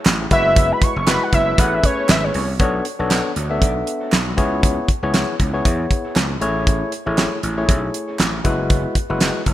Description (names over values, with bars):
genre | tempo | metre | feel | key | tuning
early-eighties boogie funk | 118 BPM | 4/4 | swing 56% on 16ths | B dorian | A4 = 440 Hz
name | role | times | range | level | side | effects
electric guitar at the edge of break-up | riff | 0.0-9.5 s | A3 to E5 | -33 LUFS | right 2 dB | none
gritty slap bass | bass | 0.1-9.5 s | F#1 to E2 | -23 LUFS | equal | overdrive
damped 70s drum kit | drums | 0.1-9.5 s | handclaps, hi-hat, kick drum, snare drum | -18 LUFS | equal | none
group handclap | percussion | 0.1-9.3 s | none | -30 LUFS | right 5 dB | none
fat analog lead | melody | 0.3-2.5 s | C#5 to C#6 | -19 LUFS | equal | chorus, slapback echo
barky tine electric piano | accompaniment | 0.3-9.4 s | G#3 to E5 | -22 LUFS | left 2 dB | none
room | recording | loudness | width
light reverb, small room ambience | rough home demo mix | -16 LUFS | side -13 dB against mid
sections
0.0-2.6 A section; 2.6-9.5 B section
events
analog synth lead solo 0.0-2.6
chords
0.3 F#9sus4; 1.6 Amaj9; 2.6 Bm9; 4.4 C#m7; 6.4 Amaj7; 8.4 F#9sus4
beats
0.06 | 0.56 1.07 1.58 2.09 | 2.60 3.11 3.62 4.12 | 4.63 5.14 5.65 6.16 | 6.67 7.17 7.68 8.19 | 8.70 9.21